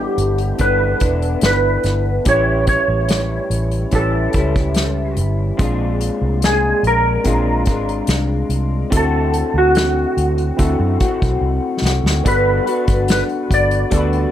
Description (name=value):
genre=indie pop, bedroom pop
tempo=72 BPM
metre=4/4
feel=straight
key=G major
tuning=A4 = 440 Hz
part: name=clean lap steel guitar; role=melody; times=0.0-14.3 s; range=F#4 to D5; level=-19 LUFS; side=right 1 dB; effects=ensemble chorus, tape echo
part: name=electric guitar through a small old amp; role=accompaniment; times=0.0-14.3 s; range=G2 to B4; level=-23 LUFS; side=left 6 dB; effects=analog chorus, vibrato effect
part: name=tine electric piano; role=accompaniment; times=0.0-14.3 s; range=B3 to B4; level=-25 LUFS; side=right 4 dB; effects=overdrive
part: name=vintage muted fingered electric bass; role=bass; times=0.0-14.2 s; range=E1 to F#2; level=-19 LUFS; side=equal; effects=none
part: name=unplugged drum kit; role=drums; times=0.2-14.3 s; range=hi-hat, kick drum, snare drum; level=-19 LUFS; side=equal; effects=none
room=little or no reverb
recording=none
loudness=-14 LUFS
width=side -11 dB against mid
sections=0.0-12.2 A section; 12.2-14.3 B section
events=drum fill 11.4-12.2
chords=0.0 G6; 2.3 A7; 5.6 Bb7; 8.9 D7; 12.2 Gmaj7